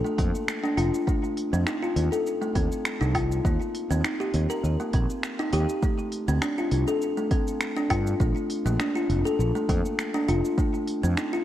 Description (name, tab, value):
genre	organic downtempo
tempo	101 BPM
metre	4/4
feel	swing 53% on 16ths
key	unclear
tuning	A4 = 438 Hz
part	kalimba	arpeggios	0.0-11.4 s	A3 to Bb4	-26 LUFS	left 1 dB	low-pass filter, digital delay
part	deep house drum kit	drums	0.1-11.4 s	finger snaps, hi-hat, shaker, woodblock	-33 LUFS	equal	none
part	fretless electric bass	bass	0.2-11.1 s	F1 to G2	-25 LUFS	equal	sidechain pumping
part	electronic kick drum	drums	0.2-10.7 s	none	-26 LUFS	equal	none
room	light reverb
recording	worn, warbling old tape, cassette tape, warbly pitch drift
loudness	-23 LUFS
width	side -12 dB against mid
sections	0.0-11.4 A section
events	none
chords	0.0 Bb; 1.1 F7; 3.5 Cm7/Eb (rootless); 5.8 Dm7; 8.2 Bbmaj7; 10.6 F7